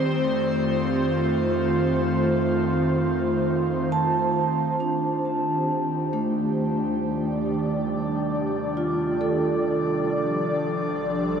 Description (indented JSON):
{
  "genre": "ambient",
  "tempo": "68 BPM",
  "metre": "3/4",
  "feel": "straight",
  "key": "unclear",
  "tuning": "A4 = 440 Hz",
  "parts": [
    { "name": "airy breathy pad", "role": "sustained chords", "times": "0.0-11.4 s", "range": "Eb3 to D5", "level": "-23 LUFS", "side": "right 1 dB", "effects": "chorus" },
    { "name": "vibraphone with soft mallets", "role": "arpeggios", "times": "0.0-11.4 s", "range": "A3 to A5", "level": "-27 LUFS", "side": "right 1 dB", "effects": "tape echo" },
    { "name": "deep rumbling drone", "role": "bass", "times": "0.2-11.4 s", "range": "Bb1 to F2", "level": "-38 LUFS", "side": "left 1 dB", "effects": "built-in reverb" },
    { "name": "organ-like drone", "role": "drone", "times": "8.0-11.4 s", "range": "C3 to G3", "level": "-39 LUFS", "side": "left 2 dB", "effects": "none" }
  ],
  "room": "wet huge ambient reverb, RT60 7.2 s",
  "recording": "none",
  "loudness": "-22 LUFS",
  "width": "side -7 dB against mid",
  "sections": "0.0-4.8 A section; 4.8-11.4 B section",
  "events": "fade-out on synth drone 0.0-4.8; fade-in on synth drone 4.8-11.4",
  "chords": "0.0 F7; 4.8 Ebmaj7; 10.1 Bbmaj7"
}